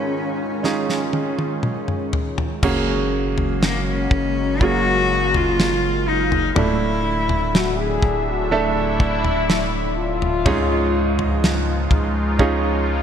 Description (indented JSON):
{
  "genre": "pop ballad",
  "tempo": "62 BPM",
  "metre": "4/4",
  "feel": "straight",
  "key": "unclear",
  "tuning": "A4 = 440 Hz",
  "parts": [
    { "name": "warm cello", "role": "melody", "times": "0.0-8.0 s", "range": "A#3 to F#4", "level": "-22 LUFS", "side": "left 2 dB", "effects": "none" },
    { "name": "clear upright piano", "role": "accompaniment", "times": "0.0-13.0 s", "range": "C#2 to E5", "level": "-24 LUFS", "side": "right 4 dB", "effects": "none" },
    { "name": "sweeping resonant pad", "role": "sustained chords", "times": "0.0-13.0 s", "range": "A2 to E#5", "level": "-27 LUFS", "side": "equal", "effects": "chorus" },
    { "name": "damped 70s drum kit", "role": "drums", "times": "0.6-12.6 s", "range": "crash cymbal, kick drum, snare drum, toms", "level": "-22 LUFS", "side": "equal", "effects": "gated reverb" },
    { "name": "saturated sub bass", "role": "bass", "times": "2.6-13.0 s", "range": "D1 to C#2", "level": "-24 LUFS", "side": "equal", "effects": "none" },
    { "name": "dark French horn section", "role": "second line", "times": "7.5-11.9 s", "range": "E4 to G#4", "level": "-24 LUFS", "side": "left 5 dB", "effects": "ping-pong delay" }
  ],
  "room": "moderate lush hall reverb, RT60 2.8 s",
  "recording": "bright 1980s-style digital production",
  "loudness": "-17 LUFS",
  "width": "side -8 dB against mid",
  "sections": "0.0-2.6 A section; 2.6-13.0 B section",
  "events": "drum fill 0.6-2.6",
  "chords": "0.0 C#add9; 2.6 F#add9; 6.6 Dsus2; 10.5 C#add9"
}